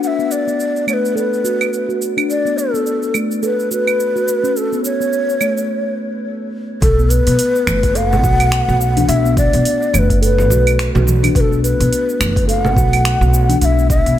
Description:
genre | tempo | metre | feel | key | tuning
organic downtempo | 106 BPM | 4/4 | swing 58% on 16ths | B minor | A4 = 440 Hz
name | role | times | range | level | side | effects
breathy mellow low ney | melody | 0.0-14.2 s | A4 to F#5 | -18 LUFS | left 1 dB | ping-pong delay
afro-pop drum kit | drums | 0.0-14.2 s | claves, finger snaps, hi-hat, shaker | -23 LUFS | right 4 dB | overdrive
bronze singing bowl | texture | 0.0-5.7 s | B3 to B4 | -38 LUFS | right 5 dB | none
steel tongue drum | arpeggios | 0.2-14.2 s | A3 to A4 | -20 LUFS | left 1 dB | tape echo
upright bass | bass | 6.8-14.1 s | F#1 to B1 | -15 LUFS | equal | none
electronic kick drum | drums | 6.8-14.0 s | none | -17 LUFS | equal | overdrive
congas | percussion | 7.7-14.0 s | none | -23 LUFS | right 2 dB | none
room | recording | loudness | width
light reverb, small room ambience | none | -13 LUFS | side -11 dB against mid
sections
0.0-6.8 A section; 6.8-14.2 B section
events
break 5.7-6.8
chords
0.0 D6; 2.3 N.C.; 6.8 B7(no3)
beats
| 0.03 0.60 1.16 1.73 | 2.29 2.86 3.43 3.99 | 4.56 5.12 5.69 6.26 | 6.82 7.39 7.96 8.52 | 9.09 9.65 10.22 10.79 | 11.35 11.92 12.48 13.05 | 13.62 14.18

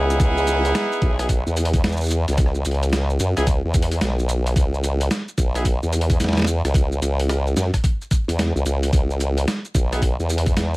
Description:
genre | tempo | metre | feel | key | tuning
glitch hop | 110 BPM | 4/4 | swing 64% on 16ths | C# minor | A4 = 438 Hz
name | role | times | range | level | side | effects
warm horn section | stabs | 0.0-5.6, 9.9-10.0 s | B3 to G#4 | -24 LUFS | right 1 dB | sidechain pumping, dub echo
formant-sweep wobble bass | bass | 0.0-10.8 s | B1 to F#2 | -20 LUFS | equal | chorus
boom bap sampler-style drum kit | drums | 0.1-10.8 s | hi-hat, rim click, shaker, snare drum | -25 LUFS | equal | none
electronic kick drum | drums | 0.2-10.5 s | none | -19 LUFS | equal | none
room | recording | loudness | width
little or no reverb | vinyl crackle | -18 LUFS | side -21 dB against mid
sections
0.0-10.8 A section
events
none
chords
0.0 C#m9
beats
| 0.20 0.75 1.29 1.84 | 2.38 2.93 3.47 4.02 | 4.57 5.11 5.66 6.20 | 6.75 7.29 7.84 8.38 | 8.93 9.47 10.02 10.56

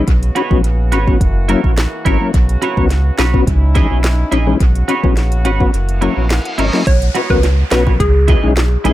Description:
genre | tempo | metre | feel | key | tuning
dancehall | 106 BPM | 4/4 | straight | B major | A4 = 435 Hz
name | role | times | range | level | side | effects
tonewheel organ | accompaniment | 0.0-8.9 s | E3 to F#5 | -19 LUFS | left 4 dB | chorus vibrato, slow rotary speaker, tape echo
warm brass ensemble | sustained chords | 0.0-6.9 s | C#3 to F#4 | -26 LUFS | equal | sidechain pumping
sub bass with octave | bass | 0.0-8.9 s | F#1 to C#2 | -14 LUFS | equal | none
afro-pop drum kit | drums | 0.1-8.9 s | handclaps, hi-hat, kick drum, rim click, snare drum | -16 LUFS | equal | none
twelve-string electric guitar | arpeggios | 0.4-8.9 s | E4 to D#5 | -22 LUFS | right 5 dB | lush chorus, tape echo
reverse cymbal and downlifter | sound effects | 6.0-8.9 s | none | -27 LUFS | equal | none
hollow square pluck | melody | 6.9-8.4 s | G#4 to C#5 | -19 LUFS | equal | chorus, tape echo
bongos | percussion | 7.2-8.9 s | none | -26 LUFS | right 5 dB | tape echo
room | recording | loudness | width
little or no reverb | echo-heavy mix | -11 LUFS | side -14 dB against mid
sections
0.0-6.9 A section; 6.9-8.9 B section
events
kick muted 5.7-6.9; reverse cymbal 6.0-6.9; tonewheel organ fill 6.0-6.9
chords
0.1 Bsus2; 1.2 F#7; 2.3 Bsus2; 3.5 C#madd9; 4.6 Bsus2; 5.7 F#7; 6.9 Bsus2; 8.0 C#madd9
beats
| 0.08 0.64 1.21 1.77 | 2.34 2.91 3.47 4.04 | 4.61 5.17 5.74 6.30 | 6.87 7.43 8.00 8.57

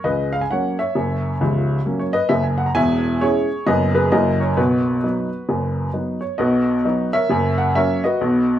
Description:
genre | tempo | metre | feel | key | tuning
jazz, stride piano | 132 BPM | 4/4 | swing 63% on 8ths | B major | A4 = 440 Hz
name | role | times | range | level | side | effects
warm upright piano | solo | 0.0-8.6 s | C#1 to A#5 | -17 LUFS | equal | none
room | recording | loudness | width
wet club reverb, RT60 0.5 s | heard from further back in the room | -17 LUFS | side -11 dB against mid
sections
0.0-6.4 A section; 6.4-8.6 B section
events
none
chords
0.0 F#; 1.0 F#7; 2.8 C#m/E; 3.7 B/F#; 4.1 F#7; 4.6 B; 7.3 F#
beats
0.04 0.50 | 0.95 1.41 1.86 2.31 | 2.77 3.22 3.67 4.13 | 4.58 5.03 5.49 5.94 | 6.39 6.84 7.30 7.75 | 8.20

